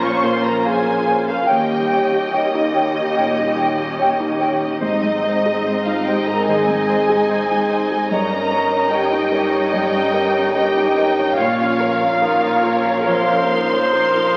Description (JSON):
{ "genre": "cinematic", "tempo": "73 BPM", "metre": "4/4", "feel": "rubato", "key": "unclear", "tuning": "A4 = 440 Hz", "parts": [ { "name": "rich studio violin section", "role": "melody", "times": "0.0-14.4 s", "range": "C5 to F5", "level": "-29 LUFS", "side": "equal", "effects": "none" }, { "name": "warm studio violin section", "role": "second line", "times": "0.0-14.4 s", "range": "Eb5 to Db6", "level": "-24 LUFS", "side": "equal", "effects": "none" }, { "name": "felt-muted upright piano", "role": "accompaniment", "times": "0.0-14.4 s", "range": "Eb2 to Db5", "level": "-25 LUFS", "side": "equal", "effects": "none" }, { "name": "warm studio viola section", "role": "accompaniment", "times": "0.0-14.4 s", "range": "C3 to Bb4", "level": "-28 LUFS", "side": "equal", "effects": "none" }, { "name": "warm French horn section", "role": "sustained chords", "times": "0.0-14.4 s", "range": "Eb4 to Db5", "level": "-24 LUFS", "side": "equal", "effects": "none" }, { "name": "rich studio double bass section", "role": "bass", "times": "0.0-14.4 s", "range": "G1 to Eb2", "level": "-37 LUFS", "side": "equal", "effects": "none" }, { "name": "warm studio cello section", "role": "bass", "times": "0.0-14.4 s", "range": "Eb2 to Bb2", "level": "-31 LUFS", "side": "equal", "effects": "none" }, { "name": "flute section", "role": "second line", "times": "0.2-13.5 s", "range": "Eb5 to G5", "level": "-26 LUFS", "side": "equal", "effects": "none" }, { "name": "warm clarinet", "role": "second line", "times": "0.2-13.4 s", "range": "C5 to Db5", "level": "-32 LUFS", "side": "equal", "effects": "none" } ], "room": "wet scoring stage reverb, RT60 1.7 s", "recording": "very old 78 rpm record, vinyl crackle", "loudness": "-18 LUFS", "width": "mono", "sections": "0.0-14.4 A section", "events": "none", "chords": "0.0 Bbmadd9; 1.5 Eb7; 4.8 Ab; 8.1 Eb7/G; 11.4 Bbmadd9" }